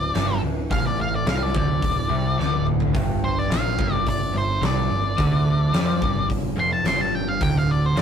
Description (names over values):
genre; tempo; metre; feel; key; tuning
blues rock power trio and southern rock; 107 BPM; 4/4; straight; unclear; A4 = 440 Hz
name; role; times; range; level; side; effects
octave-fuzz lead guitar; melody; 0.0-8.0 s; C5 to C6; -25 LUFS; left 2 dB; distortion
crunchy overdriven guitar; riff; 0.0-8.0 s; D2 to F3; -24 LUFS; right 1 dB; none
growling picked electric bass; bass; 0.0-8.0 s; D1 to F2; -27 LUFS; equal; overdrive
huge arena drum kit; drums; 0.1-8.0 s; hi-hat, kick drum, snare drum, toms; -25 LUFS; equal; none
room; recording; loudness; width
moderate studio reverb, RT60 0.6 s; rough rehearsal-room recording, tube saturation; -19 LUFS; side -8 dB against mid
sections
0.0-8.0 A section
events
lead electric guitar solo 0.0-8.0; drum fill 2.4-2.9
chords
0.0 D5; 2.9 G5; 7.4 N.C.